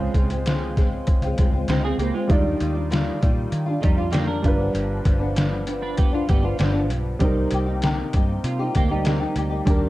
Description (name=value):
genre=indie pop, bedroom pop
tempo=98 BPM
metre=4/4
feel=straight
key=unclear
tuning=A4 = 436 Hz
part: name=flamenco guitar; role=accompaniment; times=0.0-9.9 s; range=G2 to G4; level=-27 LUFS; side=left 3 dB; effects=ensemble chorus, warbly pitch drift
part: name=warm upright piano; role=accompaniment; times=0.0-9.9 s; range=G3 to D5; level=-29 LUFS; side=right 2 dB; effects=cassette tape
part: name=vintage muted fingered electric bass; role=bass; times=0.0-9.9 s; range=F1 to Eb3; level=-26 LUFS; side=equal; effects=none
part: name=trip hop sampler-style drum kit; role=drums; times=0.1-9.8 s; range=hi-hat, kick drum, snare drum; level=-22 LUFS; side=equal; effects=overdrive
part: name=clean electric guitar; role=second line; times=1.7-9.6 s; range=G3 to C5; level=-29 LUFS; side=right 5 dB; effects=analog chorus, analog delay
room=light reverb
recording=dark, warm production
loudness=-19 LUFS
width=side -17 dB against mid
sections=0.0-9.9 A section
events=none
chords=0.0 Dbmaj7; 2.3 Ebmaj9; 4.4 G7; 7.2 Cm7